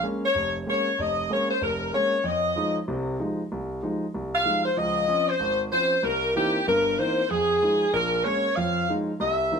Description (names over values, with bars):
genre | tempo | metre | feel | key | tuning
jazz | 190 BPM | 4/4 | swing 62% on 8ths | F minor | A4 = 440 Hz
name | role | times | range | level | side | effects
bright saxophone section | melody | 0.0-9.6 s | G4 to F5 | -23 LUFS | left 1 dB | plate reverb
warm concert grand piano | accompaniment | 0.0-9.6 s | F1 to Eb4 | -28 LUFS | right 1 dB | none
room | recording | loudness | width
moderate club ambience, RT60 0.5 s | none | -22 LUFS | side -6 dB against mid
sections
0.0-9.6 A section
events
none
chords
0.0 Bbm7; 2.2 Fm7; 4.8 Dbmaj7; 6.0 C7#9; 7.3 Fm7; 7.9 Bbm7; 8.6 Fm7